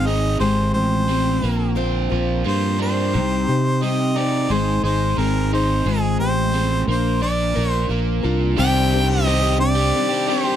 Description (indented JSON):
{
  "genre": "folk rock and heartland rock",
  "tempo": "88 BPM",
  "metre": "4/4",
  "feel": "straight",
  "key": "C minor",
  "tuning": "A4 = 440 Hz",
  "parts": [
    { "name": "bright harmonica", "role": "melody", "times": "0.0-10.6 s", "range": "Ab4 to G5", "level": "-23 LUFS", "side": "equal", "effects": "none" },
    { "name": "picked steel-string acoustic guitar", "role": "accompaniment", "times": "0.0-10.6 s", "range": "Ab2 to Bb4", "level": "-25 LUFS", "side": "left 7 dB", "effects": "none" },
    { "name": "overdriven electric guitar", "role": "riff", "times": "0.0-10.6 s", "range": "C3 to D5", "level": "-23 LUFS", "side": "right 2 dB", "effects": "none" },
    { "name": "fingered electric bass", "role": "bass", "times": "0.0-9.9 s", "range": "Ab1 to C3", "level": "-21 LUFS", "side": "equal", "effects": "none" }
  ],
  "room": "light reverb",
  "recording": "dry, close 1970s-style studio recording",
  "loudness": "-17 LUFS",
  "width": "side -10 dB against mid",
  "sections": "0.0-8.6 A section; 8.6-10.6 B section",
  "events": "none",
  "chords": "0.4 Fmadd9/Ab; 1.4 Bbadd9; 3.1 Cm; 4.5 Ab; 5.9 Fmadd9/Ab; 6.9 Bb; 8.6 Cmadd9"
}